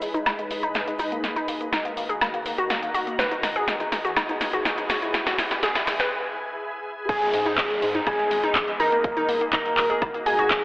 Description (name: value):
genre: progressive house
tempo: 123 BPM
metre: 4/4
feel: straight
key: G# minor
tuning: A4 = 442 Hz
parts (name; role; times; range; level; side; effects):
- shimmering ambient pad; sustained chords; 0.0-10.6 s; D#2 to B4; -31 LUFS; equal; chorus, built-in reverb, sidechain pumping
- glassy wavetable pluck; arpeggios; 0.0-10.6 s; G#3 to B4; -27 LUFS; left 1 dB; chorus, sidechain pumping, tape echo
- house drum kit; drums; 0.0-10.6 s; crash cymbal, handclaps, hi-hat, snare drum, woodblock; -26 LUFS; equal; studio reverb
- cabasa; percussion; 0.0-6.1 s; none; -48 LUFS; right 1 dB; none
- riser and downlifter; sound effects; 1.9-10.6 s; none; -35 LUFS; equal; none
- soft octave-layered synth lead; melody; 7.1-10.6 s; G#4 to A#4; -25 LUFS; equal; chorus, sidechain pumping, dub echo
- glassy wavetable pluck; second line; 7.1-10.6 s; G#5 to A#5; -27 LUFS; equal; chorus, sidechain pumping, tape echo
- saturated sub bass; bass; 7.1-10.6 s; D#1 to G#2; -40 LUFS; equal; sidechain pumping
- electronic kick drum; drums; 7.1-10.6 s; none; -33 LUFS; equal; studio reverb
room: moderate lush hall reverb, RT60 2.3 s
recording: high-pass filter, telephone sound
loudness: -22 LUFS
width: side -21 dB against mid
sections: 0.0-7.1 A section; 7.1-10.6 B section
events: build-up 0.0-7.1; drum fill 0.0-6.1; filter sweep on synth arpeggio sound 0.0-7.1; break 6.1-7.1; drop 7.1-10.6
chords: 0.0 G#m; 1.2 D#m; 3.2 G#m; 5.1 E; 7.1 G#m; 9.0 D#m